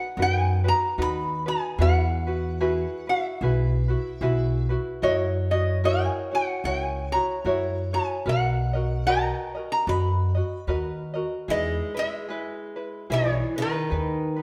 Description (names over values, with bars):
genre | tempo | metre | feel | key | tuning
Hawaiian | 74 BPM | 4/4 | swing 58% on 8ths | B major | A4 = 439 Hz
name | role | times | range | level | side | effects
lap resonator guitar | melody | 0.0-14.4 s | B4 to B5 | -29 LUFS | equal | none
tenor ukulele | accompaniment | 0.0-14.4 s | D#4 to D#5 | -31 LUFS | equal | none
upright bass | bass | 0.2-14.4 s | B1 to F#2 | -28 LUFS | equal | none
picked steel-string acoustic guitar | second line | 11.5-14.4 s | D#3 to G#3 | -32 LUFS | equal | none
room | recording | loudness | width
wet stone room reverb, RT60 1.4 s | band playing live in one room | -25 LUFS | mono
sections
0.0-11.5 A section; 11.5-14.4 B section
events
none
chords
0.0 Bmaj7; 1.8 Eadd9; 5.0 F#7; 8.2 Bmaj7; 11.5 Emaj7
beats
0.17 0.98 | 1.79 2.60 3.40 4.21 | 5.02 5.83 6.63 7.44 | 8.24 9.05 9.86 10.66 | 11.47 12.28 13.08 13.89